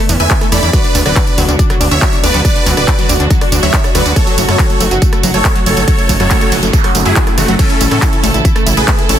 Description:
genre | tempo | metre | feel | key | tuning
uplifting trance | 140 BPM | 4/4 | straight | unclear | A4 = 440 Hz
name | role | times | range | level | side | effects
dark studio string section | sustained chords | 0.0-9.2 s | B2 to A4 | -20 LUFS | right 2 dB | sidechain pumping
analog pluck | arpeggios | 0.0-9.2 s | F#3 to B4 | -19 LUFS | left 2 dB | lush chorus, sidechain pumping, ping-pong delay
gritty driven synth bass | bass | 0.1-9.2 s | D1 to A2 | -15 LUFS | equal | sidechain pumping
big-room dance drum kit | drums | 0.1-9.2 s | crash cymbal, handclaps, hi-hat, rim click, tambourine | -18 LUFS | right 2 dB | none
supersaw chords | melody | 0.2-9.2 s | A3 to B5 | -16 LUFS | right 1 dB | phaser, sidechain pumping, ping-pong delay
electronic kick drum | drums | 0.3-9.0 s | none | -13 LUFS | equal | none
noise sweep | sound effects | 6.1-7.6 s | none | -23 LUFS | right 6 dB | none
room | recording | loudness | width
digital ambience | dense, heavily limited modern master | -9 LUFS | side -10 dB against mid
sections
0.0-9.2 A section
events
noise sweep 6.1-7.6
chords
0.0 E7sus4; 0.7 Bm/D; 4.2 F#m; 7.6 A

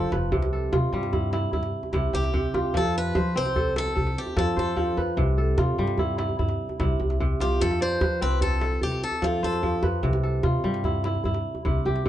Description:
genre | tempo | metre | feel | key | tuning
west african traditional, West African string and xylophone music | 99 BPM (dotted quarters) | 12/8 | straight | F lydian | A4 = 439 Hz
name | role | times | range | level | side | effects
picked swing-style acoustic guitar | melody | 0.0-9.9 s | F4 to C5 | -29 LUFS | left 1 dB | plate reverb
kora | arpeggios | 0.0-12.1 s | C3 to D5 | -27 LUFS | equal | none
upright bass | bass | 0.0-12.1 s | F1 to F3 | -27 LUFS | equal | none
djembe | percussion | 0.1-12.1 s | none | -29 LUFS | right 1 dB | none
room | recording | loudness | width
light reverb | worn, warbling old tape, cassette tape, warbly pitch drift, nothing above 10.5 kHz | -22 LUFS | side -12 dB against mid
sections
0.0-12.1 A section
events
none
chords
0.3 C; 2.7 F; 5.2 C; 7.6 F; 10.0 C

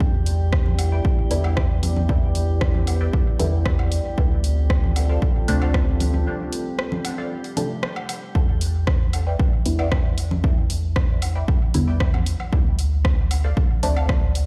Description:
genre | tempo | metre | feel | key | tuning
dub techno | 115 BPM | 4/4 | straight | E phrygian | A4 = 440 Hz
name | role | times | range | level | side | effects
dark analog pad | sustained chords | 0.0-8.3 s | B3 to D5 | -33 LUFS | equal | chorus, sidechain pumping
round analog bass | bass | 0.0-14.5 s | D2 to E2 | -24 LUFS | equal | sidechain pumping
electronic kick drum | drums | 0.0-14.2 s | none | -23 LUFS | equal | studio reverb
drifting glass-harmonics texture | texture | 0.0-8.4 s | G3 to G4 | -38 LUFS | equal | chorus, built-in reverb, sidechain pumping
deep house drum kit | drums | 0.3-14.5 s | hi-hat, rim click | -32 LUFS | equal | overdrive, studio reverb
congas and woodblock | percussion | 0.7-14.1 s | none | -34 LUFS | equal | overdrive, sidechain pumping on perc, studio reverb, dub echo
filtered dub chord stab | riff | 0.9-14.1 s | A4 to G5 | -38 LUFS | equal | phaser, lush chorus, sidechain pumping, dub echo
filtered dub chord stab | stabs | 1.3-14.5 s | C3 to E4 | -32 LUFS | equal | phaser, sidechain pumping, dub echo
room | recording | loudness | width
digital ambience | played on a big sound system in a bare room, large studio reverb | -21 LUFS | mono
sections
0.0-8.4 A section; 8.4-14.5 A section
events
break 6.3-8.4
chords
0.0 Em7; 4.2 Dm7; 8.4 Em7; 12.5 Dm7

